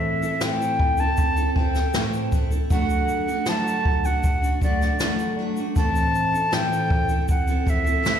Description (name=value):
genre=acoustic pop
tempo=79 BPM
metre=4/4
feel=straight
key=unclear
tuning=A4 = 440 Hz
part: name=concert flute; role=melody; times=0.0-8.2 s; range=D5 to A5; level=-25 LUFS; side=left 1 dB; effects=slapback echo, tape echo
part: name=picked steel-string acoustic guitar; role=accompaniment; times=0.0-8.2 s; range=A2 to A4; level=-26 LUFS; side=right 1 dB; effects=double-tracked left and right
part: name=jazz brush drum kit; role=drums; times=0.2-8.2 s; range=kick drum, shaker, snare drum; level=-23 LUFS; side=equal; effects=none
room=light reverb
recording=live gig heard through the venue's PA, recital hall reverb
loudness=-20 LUFS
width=side -8 dB against mid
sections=0.0-8.2 A section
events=none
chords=0.0 Am; 2.7 D; 5.8 Am